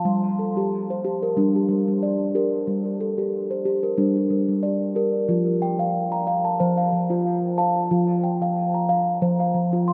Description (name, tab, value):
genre	world meditative, meditative tuned percussion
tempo	92 BPM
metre	4/4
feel	swing 56% on 16ths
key	G minor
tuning	A4 = 440 Hz
part	steel tongue drum	solo	0.0-9.9 s	F3 to C6	-22 LUFS	equal	analog delay
room	wet huge ambient reverb, RT60 8.2 s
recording	dreamy mix soaked in reverb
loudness	-23 LUFS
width	mono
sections	0.0-9.9 A section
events	none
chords	0.1 Gm; 5.3 F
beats	| 0.06 0.71 1.37 2.02 | 2.67 3.33 3.98 4.64 | 5.29 5.95 6.60 7.25 | 7.91 8.56 9.22 9.87